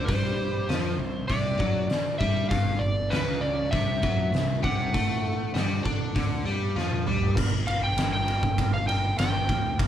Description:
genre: blues rock power trio and southern rock.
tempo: 99 BPM.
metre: 4/4.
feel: straight.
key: G mixolydian.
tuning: A4 = 440 Hz.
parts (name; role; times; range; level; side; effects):
overdriven slide guitar; melody; 0.0-9.8 s; B4 to G5; -30 LUFS; left 1 dB; none.
biting overdriven guitar; riff; 0.0-7.4 s; G2 to D4; -31 LUFS; left 1 dB; none.
fuzz fingered electric bass; bass; 0.0-9.9 s; G1 to D3; -30 LUFS; equal; overdrive.
oversized low-tuned drum kit; drums; 0.1-9.9 s; crash cymbal, hi-hat, kick drum, ride cymbal, snare drum, toms; -27 LUFS; equal; none.
overdriven tonewheel organ; sustained chords; 7.3-9.9 s; B3 to A#4; -37 LUFS; right 4 dB; slow rotary speaker, chorus vibrato.
room: light reverb.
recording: band playing live in one room.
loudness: -23 LUFS.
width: side -10 dB against mid.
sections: 0.0-7.4 A section; 7.4-9.9 B section.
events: drum fill 6.8-7.4; electric slide guitar solo 7.4-9.9.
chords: 0.1 C5; 2.5 G7#11; 3.7 C; 4.9 D; 7.4 G7#9.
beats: | 0.08 0.69 1.30 1.91 | 2.51 3.12 3.73 4.33 | 4.94 5.54 6.15 6.76 | 7.36 7.97 8.58 9.18 | 9.79.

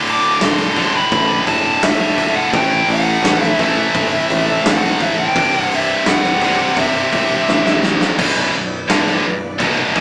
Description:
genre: heavy metal.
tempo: 85 BPM.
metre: 4/4.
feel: straight.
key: B phrygian.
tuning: A4 = 440 Hz.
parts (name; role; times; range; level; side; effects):
dark smooth lead guitar; melody; 0.0-7.8 s; E5 to D6; -20 LUFS; equal; overdrive.
dark studio string section; sustained chords; 0.0-10.0 s; E3 to D5; -29 LUFS; equal; none.
heavy high-gain guitar; riff; 0.0-10.0 s; B1 to A3; -19 LUFS; equal; distortion.
picked electric bass; bass; 0.0-10.0 s; B0 to A1; -27 LUFS; equal; none.
big rock drum kit; drums; 0.1-10.0 s; crash cymbal, hi-hat, kick drum, snare drum; -22 LUFS; equal; none.
room: moderate large studio reverb, RT60 0.8 s.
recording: band playing live in one room, small speaker sound.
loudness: -15 LUFS.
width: mono.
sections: 0.0-8.2 A section; 8.2-10.0 B section.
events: drum fill 7.5-8.2.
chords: 0.0 D; 2.5 Am; 5.4 C; 8.2 Bm.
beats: 0.41 1.12 1.83 | 2.53 3.24 3.95 4.65 | 5.36 6.06 6.77 7.48 | 8.19 8.89 9.60.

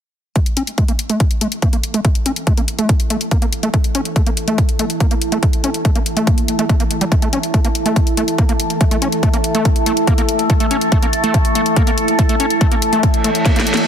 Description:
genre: psychedelic trance.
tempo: 142 BPM.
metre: 4/4.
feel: straight.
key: unclear.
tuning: A4 = 441 Hz.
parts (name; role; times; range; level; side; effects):
overdriven acid bass; riff; 0.4-13.6 s; G3 to C#4; -21 LUFS; equal; distortion, auto-pan, sidechain pumping, tape echo.
drum and bass drum kit; drums; 0.4-13.9 s; hi-hat, snare drum; -22 LUFS; left 2 dB; overdrive.
electronic kick drum; drums; 0.4-13.5 s; none; -15 LUFS; equal; overdrive.
deep dark ambient pad; texture; 1.6-13.9 s; E4 to A5; -22 LUFS; right 2 dB; chorus, built-in reverb, sidechain pumping.
overtone-sweeping drone; sustained chords; 8.2-13.9 s; A3 to A4; -21 LUFS; left 2 dB; chorus, built-in reverb, phaser, sidechain pumping.
reverse cymbal; sound effects; 13.2-13.9 s; none; -22 LUFS; right 3 dB; none.
room: light reverb, digital ambience.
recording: dense, heavily limited modern master.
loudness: -14 LUFS.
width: side -8 dB against mid.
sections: 0.4-13.9 A section.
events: filter sweep on acid bass 0.4-13.9; reverse cymbal 13.2-13.9; drum fill 13.5-13.9.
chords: 0.4 A5.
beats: | 0.36 0.78 1.20 1.62 | 2.05 2.47 2.89 3.31 | 3.74 4.16 4.58 5.00 | 5.43 5.85 6.27 6.70 | 7.12 7.54 7.96 8.38 | 8.81 9.23 9.65 10.07 | 10.50 10.92 11.34 11.77 | 12.19 12.61 13.03 13.46.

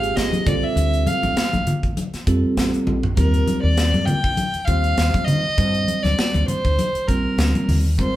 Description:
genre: electric jazz fusion.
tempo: 100 BPM.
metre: 4/4.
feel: swing 55% on 16ths.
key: Eb major.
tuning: A4 = 440 Hz.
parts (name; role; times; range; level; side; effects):
clear violin; melody; 0.0-8.2 s; Bb4 to G5; -23 LUFS; equal; none.
bell-like tine electric piano; accompaniment; 0.0-8.2 s; G3 to C5; -24 LUFS; right 2 dB; phaser.
woody fretless electric bass; bass; 0.0-8.2 s; Ab1 to Eb3; -21 LUFS; equal; none.
crisp fusion drum kit; drums; 0.0-8.1 s; hi-hat, kick drum, snare drum, toms; -24 LUFS; equal; none.
congas; percussion; 0.3-7.8 s; none; -26 LUFS; left 2 dB; none.
room: moderate large studio reverb, RT60 1.4 s.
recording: band playing live in one room.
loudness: -17 LUFS.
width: side -14 dB against mid.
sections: 0.0-8.2 A section.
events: drum fill 2.9-3.2.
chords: 0.5 Bbmaj7sus2; 3.2 Ebadd9.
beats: 0.16 | 0.76 1.36 1.97 2.57 | 3.17 3.77 4.37 4.97 | 5.58 6.18 6.78 7.38 | 7.99.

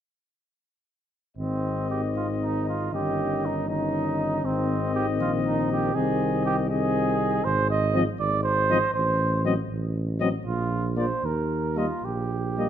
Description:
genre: classical, brass quintet.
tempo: 79 BPM (dotted quarters).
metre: 6/8.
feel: rubato.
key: Ab major, Eb major from 7.5 s.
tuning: A4 = 440 Hz.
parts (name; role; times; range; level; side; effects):
mellow trumpet; melody; 1.4-12.7 s; D5 to Eb5; -32 LUFS; left 10 dB; none.
warm flugelhorn; second line; 1.4-12.7 s; C4 to Eb5; -27 LUFS; right 4 dB; none.
dark trombone; accompaniment; 1.4-12.7 s; Eb3 to G3; -32 LUFS; right 2 dB; none.
warm French horn; accompaniment; 1.4-12.7 s; Bb3 to Db4; -31 LUFS; left 6 dB; none.
mellow tuba; bass; 1.4-12.7 s; G1 to Eb2; -28 LUFS; right 2 dB; none.
room: moderate recital hall reverb, RT60 1.4 s.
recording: none.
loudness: -23 LUFS.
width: side -10 dB against mid.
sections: 1.4-12.7 A section.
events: none.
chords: 1.4 Ab; 2.9 Eb7/G; 4.4 Ab; 6.0 Ab/C; 7.5 Fm7/Ab (rootless); 8.9 Am; 10.5 Bb5; 11.2 Eb5; 12.0 Eb/Bb (rootless).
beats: | 1.38 2.15 | 2.92 3.69 | 4.44 5.20 | 5.96 6.71 | 7.45 8.19 | 8.94 9.70 | 10.45 11.23 | 12.03.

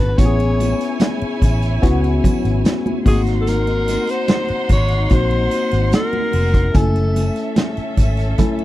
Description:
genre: lush 1970s-style soul.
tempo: 73 BPM.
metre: 4/4.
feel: straight.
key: unclear.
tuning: A4 = 440 Hz.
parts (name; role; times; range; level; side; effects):
breathy alto saxophone; melody; 0.0-7.6 s; G#4 to C#5; -22 LUFS; left 1 dB; none.
warm studio violin section; second line; 0.0-8.6 s; C#4 to B#5; -27 LUFS; right 2 dB; none.
barky tine electric piano; accompaniment; 0.0-8.6 s; A3 to G#5; -22 LUFS; left 3 dB; overdrive, analog chorus.
vintage muted fingered electric bass; bass; 0.0-8.3 s; E#1 to C#2; -18 LUFS; equal; none.
triangle; percussion; 0.0-8.6 s; none; -41 LUFS; right 17 dB; none.
vintage drum kit; drums; 0.2-8.6 s; hi-hat, kick drum, snare drum; -18 LUFS; equal; none.
congas; percussion; 0.2-8.6 s; none; -27 LUFS; right 3 dB; none.
room: little or no reverb.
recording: none.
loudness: -15 LUFS.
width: side -15 dB against mid.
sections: 0.0-8.6 A section.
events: none.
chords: 0.2 Amaj7; 3.1 G#7; 6.7 F#m9.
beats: | 0.18 1.00 1.82 2.65 | 3.46 4.29 5.11 5.92 | 6.74 7.56 8.38.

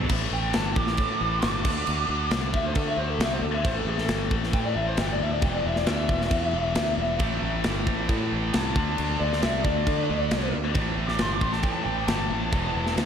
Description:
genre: hard rock.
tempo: 135 BPM.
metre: 4/4.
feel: straight.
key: A minor.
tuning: A4 = 445 Hz.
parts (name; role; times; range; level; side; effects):
heavy high-gain guitar; riff; 0.0-13.1 s; E2 to D4; -30 LUFS; left 7 dB; distortion, slapback echo.
scooped high-gain guitar; riff; 0.0-0.1, 7.2-13.1 s; E2 to D4; -33 LUFS; right 12 dB; distortion, slapback echo.
fingered electric bass; bass; 0.0-13.1 s; E1 to D3; -29 LUFS; right 1 dB; none.
tight metal drum kit; drums; 0.1-13.1 s; crash cymbal, kick drum, snare drum; -27 LUFS; equal; none.
bluesy overdriven lead guitar; melody; 0.3-12.9 s; A4 to D6; -29 LUFS; equal; distortion, slapback echo, tape echo.
room: moderate lush hall reverb, RT60 2.1 s.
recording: big arena sound.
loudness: -23 LUFS.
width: side -8 dB against mid.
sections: 0.1-13.1 A section.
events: lead electric guitar solo 0.1-13.1.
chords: 0.1 A5; 1.7 D5; 3.7 A5; 5.4 E5; 7.2 Am; 8.8 D5; 10.8 A5; 12.5 E5.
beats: | 0.09 0.54 0.98 1.43 | 1.88 2.32 2.76 3.21 | 3.65 4.10 4.54 4.98 | 5.43 5.87 6.32 6.76 | 7.20 7.65 8.09 8.54 | 8.98 9.42 9.87 10.31 | 10.76 11.20 11.64 12.09 | 12.53 12.98.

